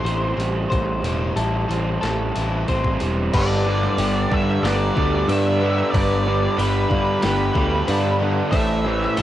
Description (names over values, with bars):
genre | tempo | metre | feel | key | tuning
rock, shoegaze and dream pop | 92 BPM | 4/4 | straight | G major | A4 = 440 Hz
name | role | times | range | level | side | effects
octave-fuzz lead guitar | melody | 0.0-9.2 s | B4 to E5 | -27 LUFS | right 1 dB | distortion, tape echo
clean electric guitar | arpeggios | 0.0-9.2 s | G4 to C5 | -29 LUFS | left 4 dB | analog chorus, cassette tape, tape echo
overdriven semi-hollow guitar | riff | 0.0-9.2 s | G2 to E4 | -29 LUFS | left 6 dB | analog chorus, cassette tape
raw garage guitar | riff | 0.0-9.2 s | G2 to E4 | -25 LUFS | right 5 dB | overdrive, reverse reverb, cassette tape
modern bright picked electric bass | bass | 0.0-9.2 s | E1 to G2 | -23 LUFS | equal | none
crisp 8-bit digital drum machine | drums | 0.1-9.2 s | crash cymbal, hi-hat, kick drum, snare drum | -26 LUFS | equal | cassette tape
distorted electric guitar | riff | 3.3-9.2 s | G2 to A3 | -24 LUFS | left 1 dB | distortion, cassette tape
ethereal airy pad | sustained chords | 5.1-9.2 s | G4 to E6 | -34 LUFS | left 2 dB | none
room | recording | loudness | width
little or no reverb | home recording on cassette | -18 LUFS | side -12 dB against mid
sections
0.0-3.3 A section; 3.3-9.2 B section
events
none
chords
0.0 Am7; 3.3 G; 8.5 Am7